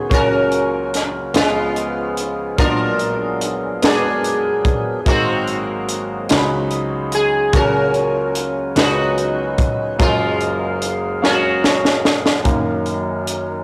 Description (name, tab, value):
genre	slow gospel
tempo	49 BPM (dotted quarters)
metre	6/8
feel	straight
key	F# major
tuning	A4 = 440 Hz
part	sitar	melody	0.0-12.4 s	G#3 to A#4	-22 LUFS	equal	none
part	clear grand piano	accompaniment	0.0-13.6 s	F#1 to B5	-25 LUFS	equal	cassette tape
part	tonewheel organ	sustained chords	0.0-13.6 s	C#3 to E#5	-28 LUFS	equal	slow rotary speaker, overdrive, cassette tape
part	crisp fusion drum kit	drums	0.1-13.5 s	hi-hat, kick drum, snare drum	-21 LUFS	equal	cassette tape
room	light reverb, small room ambience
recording	home recording on cassette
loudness	-18 LUFS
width	mono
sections	0.0-12.5 A section; 12.5-13.6 B section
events	drum fill 11.2-12.5; grand piano solo 12.5-13.6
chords	0.1 F#/C#; 1.4 C#7; 2.6 A#7b9b13; 5.1 G#9; 6.3 C#9sus4; 7.5 F#/C#; 8.8 C#9sus4; 10.0 F#maj9; 12.5 F#6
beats	| 0.12 1.35 | 2.59 3.82 | 5.06 6.29 | 7.53 8.76 | 9.99 11.22 | 12.46